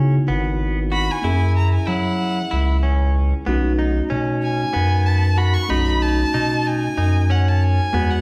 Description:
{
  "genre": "progressive instrumental, progressive",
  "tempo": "188 BPM (eighths)",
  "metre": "7/8",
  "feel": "straight",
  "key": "unclear",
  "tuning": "A4 = 437 Hz",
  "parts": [
    { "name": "bell-like tine electric piano", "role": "accompaniment", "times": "0.0-8.2 s", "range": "G#3 to G#4", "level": "-27 LUFS", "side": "equal", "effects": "none" },
    { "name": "direct-recorded clean electric guitar", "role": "arpeggios", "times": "0.0-8.2 s", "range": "B3 to F#4", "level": "-30 LUFS", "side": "equal", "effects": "none" },
    { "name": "round analog bass", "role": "bass", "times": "0.0-8.2 s", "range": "G#1 to F#3", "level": "-21 LUFS", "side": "equal", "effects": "none" },
    { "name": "rich violin", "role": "melody", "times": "0.9-8.2 s", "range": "F#5 to C#6", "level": "-27 LUFS", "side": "equal", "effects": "none" }
  ],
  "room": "wet recital hall reverb, RT60 1.3 s",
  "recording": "recorded in a church or concert hall",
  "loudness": "-19 LUFS",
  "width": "mono",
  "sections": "0.0-8.2 A section",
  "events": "violin solo 0.0-8.2",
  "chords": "0.0 C#m11; 1.2 F#7; 3.5 B7",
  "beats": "0.28 0.60 0.92 | 1.24 1.56 1.88 2.20 2.52 2.83 3.15 | 3.47 3.79 4.11 4.43 4.75 5.07 5.39 | 5.71 6.03 6.35 6.67 6.99 7.31 7.63 | 7.95"
}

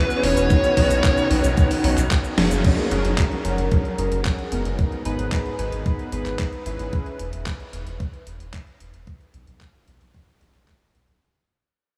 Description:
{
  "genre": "italo disco",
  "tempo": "112 BPM",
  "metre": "4/4",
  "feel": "straight",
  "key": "G# minor",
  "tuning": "A4 = 440 Hz",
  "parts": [
    { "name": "fuzz lead guitar", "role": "melody", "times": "0.0-1.3 s", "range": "B4 to C#5", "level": "-27 LUFS", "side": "equal", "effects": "distortion, diffuse ambient delay" },
    { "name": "clear studio string section", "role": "sustained chords", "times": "0.0-2.6 s", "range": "D#3 to G#4", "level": "-30 LUFS", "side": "equal", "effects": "none" },
    { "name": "chorused polysynth", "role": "stabs", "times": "0.0-7.2 s", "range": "G#2 to B4", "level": "-29 LUFS", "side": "equal", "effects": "diffuse ambient delay" },
    { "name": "clean 12-bit digital drum machine", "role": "drums", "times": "0.1-11.2 s", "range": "cabasa, crash cymbal, handclaps, hi-hat, snare drum", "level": "-30 LUFS", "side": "equal", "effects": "small room ambience" },
    { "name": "round analog bass", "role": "bass", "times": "0.2-11.2 s", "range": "E1 to B1", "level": "-28 LUFS", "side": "equal", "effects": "none" },
    { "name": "electronic kick drum", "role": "drums", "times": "0.5-10.8 s", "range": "none", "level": "-23 LUFS", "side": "equal", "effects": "small room ambience" }
  ],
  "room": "wet huge ambient reverb, RT60 9.0 s",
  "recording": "dreamy mix soaked in reverb, small room ambience",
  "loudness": "-22 LUFS",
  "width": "mono",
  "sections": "0.0-2.6 A section; 2.6-11.2 B section",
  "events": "drum fill 2.4; band accent 2.4; fade-out 2.6-11.2",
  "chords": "0.0 E6; 0.5 F#add9; 4.8 G#m; 6.9 N.C.",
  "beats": "| 0.50 1.04 1.57 2.11 | 2.64 3.18 3.72 4.25 | 4.79 5.32 5.86 6.39 | 6.93 7.47 8.00 8.54 | 9.07 9.61 10.14 10.68"
}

